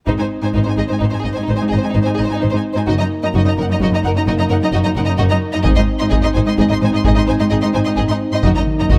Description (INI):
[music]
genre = cinematic, epic orchestral film score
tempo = 86 BPM (dotted quarters)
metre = 12/8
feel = straight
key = unclear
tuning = A4 = 440 Hz
[part]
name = rich symphonic violin section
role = melody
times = 0.1-8.9 s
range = C5 to C6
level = -29 LUFS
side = equal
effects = none
[part]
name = rich studio violin section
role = second line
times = 0.1-9.0 s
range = Eb4 to Eb5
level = -26 LUFS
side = equal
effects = none
[part]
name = rich studio viola section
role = accompaniment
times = 0.1-8.9 s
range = Eb4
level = -27 LUFS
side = equal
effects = none
[part]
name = mellow French horn section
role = sustained chords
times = 0.1-9.0 s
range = Bb3 to Eb4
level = -24 LUFS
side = equal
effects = none
[part]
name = rich symphonic cello section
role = bass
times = 0.1-9.0 s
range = Gb2 to Ab2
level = -22 LUFS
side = equal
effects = none
[part]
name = rich symphonic double bass section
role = bass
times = 0.1-8.9 s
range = Gb1 to Ab1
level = -22 LUFS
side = equal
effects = none
[part]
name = taiko ensemble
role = drums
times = 0.1-1.0, 5.6-9.0 s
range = none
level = -20 LUFS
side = equal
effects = none
[part]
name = timpani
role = percussion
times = 8.4-9.0 s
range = Eb3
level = -26 LUFS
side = equal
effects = none
[sound]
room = light reverb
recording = close, detailed microphones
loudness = -16 LUFS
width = mono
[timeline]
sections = 0.1-9.0 A section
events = timpani fill 8.4-9.0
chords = 0.1 Ab; 2.9 Ebm/Gb; 5.7 Ab; 8.4 Ebm/Gb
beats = | 0.09 0.79 1.48 2.18 | 2.87 3.57 4.26 4.96 | 5.66 6.35 7.05 7.75 | 8.44